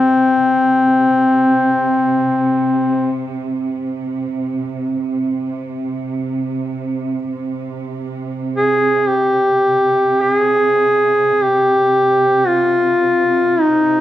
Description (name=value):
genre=caucasian folk, Caucasian lament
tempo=free time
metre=none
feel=none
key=unclear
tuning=A4 = 439 Hz
part: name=clear duduk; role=melody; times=0.0-14.0 s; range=C4 to Ab4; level=-12 LUFS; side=left 1 dB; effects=none
part: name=rich symphonic string section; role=drone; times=0.0-14.0 s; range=C3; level=-22 LUFS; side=right 3 dB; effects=none
room=moderate scoring stage reverb, RT60 1.5 s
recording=dark, warm production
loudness=-14 LUFS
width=side -13 dB against mid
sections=0.0-7.3 A section; 7.3-14.0 A section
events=none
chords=none